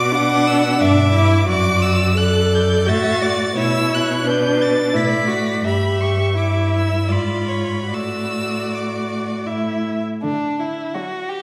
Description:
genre	classical, slow romantic movement for string quartet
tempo	71-88 BPM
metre	3/4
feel	rubato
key	D major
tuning	A4 = 440 Hz
part	rich violin	melody	0.0-11.4 s	D5 to B6	-26 LUFS	equal	none
part	warm violin	second line	0.0-11.4 s	D4 to F#5	-26 LUFS	equal	none
part	rich viola	accompaniment	0.0-11.4 s	F#3 to A4	-24 LUFS	equal	none
part	rich cello	bass	0.0-10.8 s	F#2 to D3	-22 LUFS	equal	none
room	wet recital hall reverb, RT60 1.5 s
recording	heard from further back in the room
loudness	-18 LUFS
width	mono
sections	0.0-10.2 A section; 10.2-11.4 B section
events	none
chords	0.0 Bm; 1.5 D/F#; 3.6 Bm; 5.6 Em/G; 7.1 G#dim7; 7.9 D/A; 9.5 A5; 10.2 D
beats	0.12 0.80 | 1.49 2.18 2.88 | 3.57 4.26 4.95 | 5.65 6.36 7.09 | 7.92 8.71 9.48 | 10.24 10.95

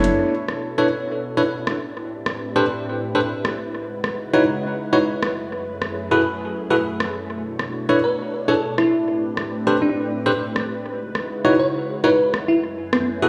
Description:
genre	UK garage, two-step garage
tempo	135 BPM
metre	4/4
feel	swing 66% on 16ths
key	B dorian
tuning	A4 = 441 Hz
part	bell-like FM electric piano	melody	0.0-0.1, 8.0-13.1 s	B3 to C#5	-24 LUFS	equal	chorus, analog delay
part	soft string machine	sustained chords	0.3-13.3 s	F#2 to G#5	-30 LUFS	equal	phaser, ensemble chorus
part	bell-like tine electric piano	stabs	0.0-13.3 s	D4 to C#5	-22 LUFS	equal	analog delay
part	garage drum kit	drums	0.0-13.0 s	hi-hat, rim click	-30 LUFS	equal	analog delay
room	wet echo chamber reverb, RT60 1.7 s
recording	echo-heavy mix, studio ambience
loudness	-21 LUFS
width	mono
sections	0.1-13.3 A section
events	none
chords	0.1 Bm11; 1.7 Am11; 3.7 C#m11; 5.2 F#m11; 7.2 Bm11; 8.8 Am11; 10.8 C#m11; 12.3 F#m11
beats	| 0.12 0.56 1.00 1.45 | 1.89 2.34 2.78 3.23 | 3.67 4.12 4.56 5.00 | 5.45 5.89 6.34 6.78 | 7.23 7.67 8.12 8.56 | 9.00 9.45 9.89 10.34 | 10.78 11.23 11.67 12.12 | 12.56 13.00

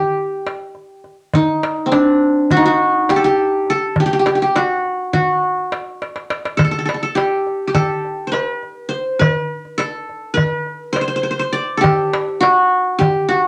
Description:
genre	Turkish makam ensemble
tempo	206 BPM (eighths)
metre	9/8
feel	straight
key	unclear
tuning	A4 = 440 Hz
part	qanun	melody	0.0-13.5 s	C4 to D5	-18 LUFS	equal	none
part	darbuka	percussion	0.2-13.4 s	none	-22 LUFS	equal	none
room	wet studio reverb, RT60 0.6 s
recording	none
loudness	-17 LUFS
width	mono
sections	0.0-13.5 A section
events	drum fill 6.0-6.6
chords	none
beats	0.17 0.46 0.75 1.04 | 1.33 1.63 1.92 2.21 2.50 2.79 3.08 3.38 3.67 | 3.96 4.25 4.54 4.83 5.12 5.42 5.71 6.00 6.29 | 6.58 6.88 7.17 7.46 7.75 8.04 8.34 8.63 8.92 | 9.21 9.51 9.80 10.09 10.38 10.67 10.97 11.26 11.55 | 11.84 12.14 12.43 12.72 13.01 13.30

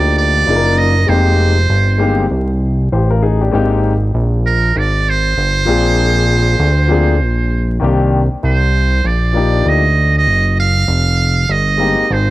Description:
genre	hip hop, jazz-hop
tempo	98 BPM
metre	4/4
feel	swing 62% on 16ths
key	C minor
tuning	A4 = 440 Hz
part	trumpet with metal mute	melody	0.0-12.3 s	Bb4 to F5	-16 LUFS	right 5 dB	cassette tape
part	warm concert grand piano	accompaniment	0.0-12.0 s	Eb3 to C5	-17 LUFS	left 4 dB	cassette tape
part	fat analog bass	bass	0.0-12.3 s	F1 to D2	-14 LUFS	equal	none
room	small room ambience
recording	home recording on cassette, vinyl crackle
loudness	-11 LUFS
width	side -17 dB against mid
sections	0.0-8.4 A section; 8.4-12.3 A section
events	none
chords	0.0 Cm11 (rootless); 1.1 Fm11; 3.5 Abmaj7; 5.7 Bb7; 7.8 Cm9; 8.4 Cm11; 10.9 Fm11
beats	0.47 | 1.08 1.70 2.31 2.92 | 3.53 4.14 4.76 5.37 | 5.98 6.59 7.21 7.82 | 8.43 9.04 9.65 10.27 | 10.88 11.49 12.10

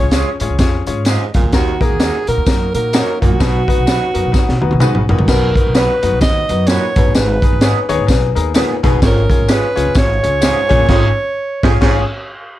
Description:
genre	uptempo 1960s-style soul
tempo	128 BPM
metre	4/4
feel	swing 60% on 8ths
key	unclear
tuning	A4 = 440 Hz
part	breathy alto saxophone	melody	0.0-12.3 s	F#4 to D#5	-19 LUFS	right 2 dB	none
part	clear baby grand piano	accompaniment	0.0-12.0 s	G#2 to A#5	-20 LUFS	left 8 dB	none
part	upright bass	bass	0.0-12.0 s	F#1 to B2	-18 LUFS	equal	none
part	electric guitar through a small old amp	stabs	0.1-12.0 s	G#3 to B4	-22 LUFS	right 6 dB	wide subtle chorus
part	crunchy breakbeat drum kit	drums	0.1-12.0 s	crash cymbal, hi-hat, kick drum, snare drum, toms	-15 LUFS	equal	none
part	tambourine	percussion	0.1-10.6 s	none	-28 LUFS	left 10 dB	none
part	warm baritone saxophone	riff	1.1-12.0 s	D#2 to B2	-22 LUFS	right 6 dB	none
room	light reverb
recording	dark, warm production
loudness	-12 LUFS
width	side -14 dB against mid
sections	0.0-5.3 A section; 5.3-12.6 B section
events	drum fill 4.3-5.3; grand piano fill 4.3-5.3; band accent 10.9-12.6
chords	0.0 C#; 1.5 D#m; 3.4 B; 6.9 G#m; 9.0 C#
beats	0.13 0.60 1.06 | 1.53 2.00 2.47 2.94 | 3.41 3.87 4.34 4.81 | 5.28 5.75 6.21 6.68 | 7.15 7.62 8.09 8.55 | 9.02 9.49 9.96 10.42 | 10.89 11.36 11.82 12.29

